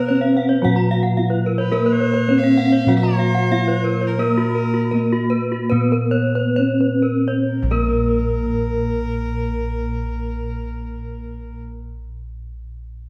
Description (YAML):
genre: gamelan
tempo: 60-110 BPM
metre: 4/4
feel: straight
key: Bb pelog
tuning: A4 = 439 Hz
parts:
  - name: gamelan-type bronze metallophone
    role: melody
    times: 0.0-11.8 s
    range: Bb3 to Gb4-40c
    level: -23 LUFS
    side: equal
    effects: none
  - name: rich violin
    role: second line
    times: 0.0-11.6 s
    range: Bb4 to F5-42c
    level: -32 LUFS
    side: equal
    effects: none
  - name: gamelan-type bronze metallophone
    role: accompaniment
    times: 0.0-11.8 s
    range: Gb3-40c to Cb4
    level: -27 LUFS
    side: equal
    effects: none
  - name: gamelan-type bronze metallophone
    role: arpeggios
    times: 0.0-11.8 s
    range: Gb4-40c to Bb5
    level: -29 LUFS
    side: equal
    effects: none
  - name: gamelan-type bossed gongs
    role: bass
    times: 0.0-11.7 s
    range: Bb1 to Cb5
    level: -25 LUFS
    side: equal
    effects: none
  - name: gamelan-type bronze metallophone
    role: arpeggios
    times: 0.1-11.8 s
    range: Bb4 to Gb5-40c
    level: -30 LUFS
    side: equal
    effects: slapback echo
room: wet recital hall reverb, RT60 1.6 s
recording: none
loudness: -19 LUFS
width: mono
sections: 0.0-7.5 A section; 7.5-13.1 B section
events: slowing down 1.7-7.5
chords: none